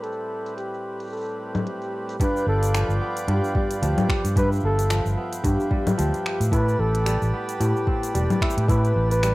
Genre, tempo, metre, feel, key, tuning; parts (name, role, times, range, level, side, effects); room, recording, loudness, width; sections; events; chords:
folktronica; 111 BPM; 4/4; swing 56% on 16ths; A4 = 440 Hz
breathy flugelhorn; melody; 0.0-9.3 s; G4 to B4; -28 LUFS; equal; vintage 12-bit sampler grit, digital delay
hand-pumped harmonium; sustained chords; 0.0-9.3 s; A2 to A5; -32 LUFS; right 2 dB
organic electronic drum kit; drums; 0.0-9.3 s; cabasa, congas, finger snaps, hi-hat; -28 LUFS; left 2 dB; overdrive, low-pass filter on hats, low-pass filter on perc, low-pass filter on snare
kora; arpeggios; 2.2-9.3 s; G2 to G4; -28 LUFS; equal; digital delay
electronic kick drum; drums; 2.2-8.8 s; -24 LUFS; equal; overdrive
fingered electric bass; bass; 2.5-9.3 s; E1 to A2; -22 LUFS; equal
studio ambience; rough home demo mix; -21 LUFS; side -19 dB against mid
0.0-2.2 A section; 2.2-9.3 B section
0.0 Am9; 2.2 G7; 6.5 Am9